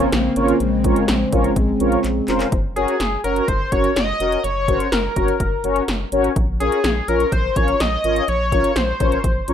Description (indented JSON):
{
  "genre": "synth-pop",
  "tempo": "125 BPM",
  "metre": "4/4",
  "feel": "straight",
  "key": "unclear",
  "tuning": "A4 = 440 Hz",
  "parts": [
    { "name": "mellow synth brass", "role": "accompaniment", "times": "0.0-9.5 s", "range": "Db4 to Db5", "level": "-21 LUFS", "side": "equal", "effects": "chorus, plate reverb" },
    { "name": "chorused pulse-width pad", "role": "sustained chords", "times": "0.0-2.5 s", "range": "Db3 to C4", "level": "-20 LUFS", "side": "left 2 dB", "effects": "plate reverb" },
    { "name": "rubbery square bass", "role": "bass", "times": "0.0-9.5 s", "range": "F1 to Bb1", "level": "-24 LUFS", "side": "equal", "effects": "none" },
    { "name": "80s electronic pad drums", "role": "drums", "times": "0.0-9.5 s", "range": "handclaps, hi-hat, kick drum, snare drum", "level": "-22 LUFS", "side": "equal", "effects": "none" },
    { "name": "octave-doubled lead", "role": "melody", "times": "2.8-9.5 s", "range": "Ab4 to Eb5", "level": "-21 LUFS", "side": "left 2 dB", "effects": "chorus, analog delay, plate reverb" }
  ],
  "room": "moderate studio reverb, RT60 0.6 s",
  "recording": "rough home demo mix",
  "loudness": "-16 LUFS",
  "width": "side -9 dB against mid",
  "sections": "0.0-2.5 A section; 2.5-9.5 B section",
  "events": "drum fill 2.0-2.5",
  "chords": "0.0 Bbmadd9; 2.5 Gbadd9; 6.4 Bbmadd9"
}